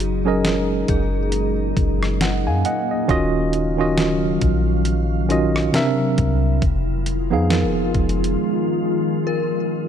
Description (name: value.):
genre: contemporary R&B.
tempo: 68 BPM.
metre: 4/4.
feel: swing 58% on 16ths.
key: unclear.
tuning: A4 = 442 Hz.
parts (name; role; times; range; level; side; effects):
glassy FM pad; sustained chords; 0.0-9.9 s; Bb2 to F5; -25 LUFS; left 2 dB; ensemble chorus, built-in reverb.
soft 808-style bass; bass; 0.0-8.4 s; Eb1 to Gb2; -22 LUFS; equal; none.
clean 12-bit digital drum machine; drums; 0.0-8.4 s; hi-hat, kick drum, rim click, snare drum; -23 LUFS; equal; none.
synth chime; texture; 0.0-9.9 s; Gb4 to Bb4; -31 LUFS; left 5 dB; ensemble chorus, ping-pong delay.
mellow tine electric piano; accompaniment; 0.2-9.9 s; C3 to Ab5; -21 LUFS; right 2 dB; medium stereo tremolo.
room: light reverb.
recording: none.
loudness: -17 LUFS.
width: side -9 dB against mid.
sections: 0.0-9.9 A section.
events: silent gap 8.4-9.9.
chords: 0.0 Gb69; 3.1 Ebm9; 5.7 C7; 6.6 Fm7b5.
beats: 0.44 1.32 2.21 | 3.09 3.97 4.86 5.74 | 6.62 7.50 8.38 9.27.